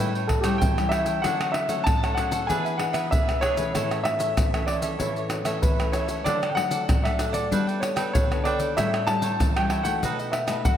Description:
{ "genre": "samba and choro", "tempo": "96 BPM", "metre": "4/4", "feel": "straight", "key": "unclear", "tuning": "A4 = 438 Hz", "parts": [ { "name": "dark baby grand piano", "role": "melody", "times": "0.0-10.8 s", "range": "G4 to A5", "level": "-26 LUFS", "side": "left 1 dB", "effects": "ping-pong delay" }, { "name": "cavaquinho", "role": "accompaniment", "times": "0.0-10.8 s", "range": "D4 to G5", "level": "-31 LUFS", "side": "right 4 dB", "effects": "none" }, { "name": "nylon-string guitar", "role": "accompaniment", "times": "0.0-10.8 s", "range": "A2 to A4", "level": "-29 LUFS", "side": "left 2 dB", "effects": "none" }, { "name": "maracas, pandeiro, surdo and tamborim", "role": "percussion", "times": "0.2-10.8 s", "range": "none", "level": "-26 LUFS", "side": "equal", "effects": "none" } ], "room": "moderate plate reverb, RT60 2.7 s", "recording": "dreamy mix soaked in reverb", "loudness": "-22 LUFS", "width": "side -10 dB against mid", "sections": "0.0-10.8 A section", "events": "none", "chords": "0.0 A7; 1.2 Dmaj7; 2.5 E7; 3.7 A; 6.3 D; 7.5 Gadd9; 8.8 A7; 10.0 B7" }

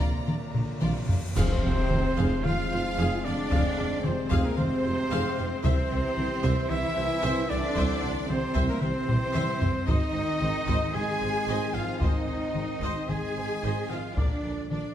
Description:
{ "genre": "cinematic, epic orchestral film score", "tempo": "113 BPM", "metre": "4/4", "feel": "straight", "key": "F dorian", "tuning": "A4 = 440 Hz", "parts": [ { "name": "warm symphonic violin section", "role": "melody", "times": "0.0-14.9 s", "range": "Bb4 to Bb5", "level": "-40 LUFS", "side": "left 4 dB", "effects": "none" }, { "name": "clear symphonic violin section", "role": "second line", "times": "0.0-14.9 s", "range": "D4 to Ab5", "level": "-38 LUFS", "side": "left 3 dB", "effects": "none" }, { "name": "rich symphonic viola section", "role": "accompaniment", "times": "0.0-14.8 s", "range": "Bb3 to F5", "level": "-37 LUFS", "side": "equal", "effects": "none" }, { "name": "dark French horn section", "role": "sustained chords", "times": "0.0-14.9 s", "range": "Eb3 to D4", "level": "-37 LUFS", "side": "left 4 dB", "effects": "none" }, { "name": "mellow trombone section", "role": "sustained chords", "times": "0.0-14.9 s", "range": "Bb2 to Ab3", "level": "-36 LUFS", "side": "right 2 dB", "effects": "none" }, { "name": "mellow trumpet", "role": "stabs", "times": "0.0-14.9 s", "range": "Bb4 to Ab5", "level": "-34 LUFS", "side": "right 1 dB", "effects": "none" }, { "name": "dark tuba", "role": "bass", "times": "0.0-14.8 s", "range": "F1 to C2", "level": "-35 LUFS", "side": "right 3 dB", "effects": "none" }, { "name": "rich symphonic cello section", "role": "bass", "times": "0.0-14.9 s", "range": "Bb2 to Ab4", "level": "-33 LUFS", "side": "right 1 dB", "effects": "none" }, { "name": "warm symphonic double bass section", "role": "bass", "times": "0.0-14.8 s", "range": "Ab1 to F2", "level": "-34 LUFS", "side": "right 2 dB", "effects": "none" }, { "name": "taiko ensemble", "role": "drums", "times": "0.0-14.9 s", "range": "none", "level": "-29 LUFS", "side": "left 1 dB", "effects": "none" }, { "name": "cymbal swell and impact", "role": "sound effects", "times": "1.1-3.5 s", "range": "none", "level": "-37 LUFS", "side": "equal", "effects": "none" }, { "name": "clash cymbals and concert bass drum", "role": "percussion", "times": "1.4-2.4 s", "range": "none", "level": "-33 LUFS", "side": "equal", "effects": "none" }, { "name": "timpani", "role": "percussion", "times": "1.4-2.1 s", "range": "F2", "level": "-34 LUFS", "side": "left 1 dB", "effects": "none" } ], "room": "moderate concert hall reverb, RT60 2.3 s", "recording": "none", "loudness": "-24 LUFS", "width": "side -10 dB against mid", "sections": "0.0-1.4 A section; 1.4-14.9 B section", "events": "drum fill 0.5-1.4, 9.1-9.9; cymbal swell 1.1-1.4; band accent 1.4-1.9; impact 1.4-3.5", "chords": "0.0 Bb; 1.4 Fm; 5.6 C; 9.9 Ab; 14.2 Bb" }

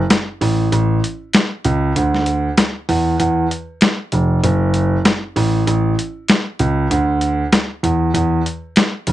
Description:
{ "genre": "hip hop, boom-bap hip-hop", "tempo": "97 BPM", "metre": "4/4", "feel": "swing 61% on 16ths", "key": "F# minor", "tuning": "A4 = 439 Hz", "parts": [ { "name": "boom bap sampler-style drum kit", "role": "drums", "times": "0.1-9.1 s", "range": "hi-hat, snare drum", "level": "-16 LUFS", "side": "left 1 dB", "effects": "vintage 12-bit sampler grit" }, { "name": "dark baby grand piano", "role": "bass", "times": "0.4-9.1 s", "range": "F1 to E2", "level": "-15 LUFS", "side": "right 1 dB", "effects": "none" } ], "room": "light reverb", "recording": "dark, warm production, nothing above 10.7 kHz", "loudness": "-15 LUFS", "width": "side -14 dB against mid", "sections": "0.0-9.1 A section", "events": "break 0.0-9.1", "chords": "none" }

